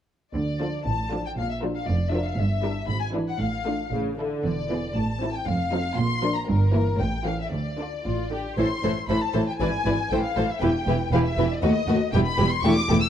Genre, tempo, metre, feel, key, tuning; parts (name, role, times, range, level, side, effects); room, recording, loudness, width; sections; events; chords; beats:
quick classical-period movement for string orchestra; 118 BPM; 2/4; straight; D minor, A minor from 8.6 s; A4 = 443 Hz
warm studio violin section; melody; 0.3-13.1 s; Bb4 to E6; -29 LUFS; left 4 dB
clear studio double bass section; bass; 0.3-13.0 s; E1 to D#2; -28 LUFS; right 2 dB
rich studio cello section; bass; 0.4-13.0 s; D2 to D3; -29 LUFS; right 2 dB
rich studio violin section; second line; 0.6-13.0 s; D4 to D5; -32 LUFS; left 4 dB
rich studio viola section; accompaniment; 0.6-13.0 s; C#3 to F#4; -27 LUFS; equal
moderate recital hall reverb, RT60 1.8 s; dark, warm production; -22 LUFS; side -10 dB against mid
0.3-8.6 A section; 8.6-13.1 B section
0.3 Dm; 1.4 Bb; 2.4 Em7b5/G; 2.9 E7/G#; 3.4 Dm/A; 3.9 A; 4.4 E7; 5.0 Am; 5.5 F7; 6.0 Bb; 6.5 Edim/G; 7.0 A7; 7.5 Dm; 8.6 Am; 9.6 E7/G#; 10.1 Am; 10.6 Em; 11.6 B7 (rootless); 12.1 Em
| 0.35 0.86 | 1.38 1.88 | 2.38 2.89 | 3.40 3.92 | 4.45 4.96 | 5.47 5.98 | 6.48 6.99 | 7.52 8.05 | 8.58 9.09 | 9.60 10.11 | 10.62 11.12 | 11.63 12.14 | 12.64